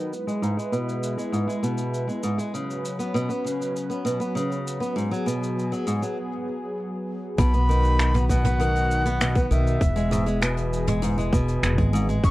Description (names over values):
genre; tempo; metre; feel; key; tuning
folktronica; 99 BPM; 4/4; straight; B major; A4 = 440 Hz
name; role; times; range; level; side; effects
warm analog pad; sustained chords; 0.0-12.3 s; C#3 to B4; -31 LUFS; equal; chorus, tremolo, vintage 12-bit sampler grit
flamenco guitar; arpeggios; 0.0-12.3 s; G#2 to B3; -26 LUFS; equal; low-pass filter, tape echo
jazz brush drum kit; drums; 0.1-12.3 s; cabasa, finger snaps, hi-hat, toms; -32 LUFS; right 1 dB; none
breathy bright concert flute; melody; 7.4-12.3 s; E5 to C#6; -28 LUFS; equal; vintage 12-bit sampler grit, tape echo
upright bass; bass; 7.4-12.3 s; E1 to B1; -23 LUFS; equal; none
electronic kick drum; drums; 7.4-12.3 s; none; -22 LUFS; equal; none
room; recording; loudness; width
little or no reverb; dry, close 1970s-style studio recording; -22 LUFS; side -17 dB against mid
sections
0.0-7.4 A section; 7.4-12.3 B section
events
break 6.2-7.4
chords
0.1 E; 2.5 F#sus4; 5.0 G#m7; 7.4 B; 9.8 E